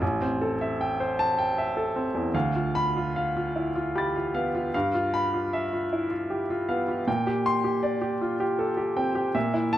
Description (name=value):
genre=classical, impressionist solo piano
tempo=52 BPM (dotted quarters)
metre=6/8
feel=rubato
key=D minor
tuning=A4 = 440 Hz
part: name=clear baby grand piano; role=solo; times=0.0-9.8 s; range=A1 to A6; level=-24 LUFS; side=equal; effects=none
room=moderate recital hall reverb, RT60 1.3 s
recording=close, detailed microphones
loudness=-24 LUFS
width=side -12 dB against mid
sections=0.0-2.3 A section; 2.3-9.8 B section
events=none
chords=0.0 Am7; 2.3 Dm6; 4.7 G6; 7.1 Bb69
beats=| 0.01 1.18 | 2.34 3.54 | 4.74 5.91 | 7.07 8.21 | 9.35